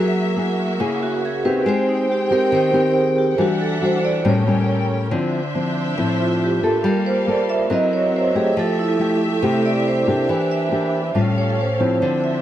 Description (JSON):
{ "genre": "bossa nova", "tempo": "139 BPM", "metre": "4/4", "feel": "straight", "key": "unclear", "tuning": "A4 = 440 Hz", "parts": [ { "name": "nylon-string guitar", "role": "accompaniment", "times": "0.0-12.4 s", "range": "A2 to Bb4", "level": "-19 LUFS", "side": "left 2 dB", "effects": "none" }, { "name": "vibraphone with medium hard mallets", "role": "accompaniment", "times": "0.0-12.4 s", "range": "Eb4 to E5", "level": "-21 LUFS", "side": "right 3 dB", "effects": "none" }, { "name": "warm symphonic string section", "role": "sustained chords", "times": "0.0-12.4 s", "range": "A3 to G5", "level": "-26 LUFS", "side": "equal", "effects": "none" } ], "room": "light reverb", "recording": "dark, warm production", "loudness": "-17 LUFS", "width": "side -12 dB against mid", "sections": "0.0-12.0 A section", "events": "vibraphone solo 0.0-12.4", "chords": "0.0 Gb9; 1.7 Abmaj7; 3.4 Em9; 4.3 A7b9; 5.1 Dm9; 6.8 Gm9; 7.7 Gb7#11; 8.6 Fmaj9; 10.3 Em7b5; 11.2 A7alt" }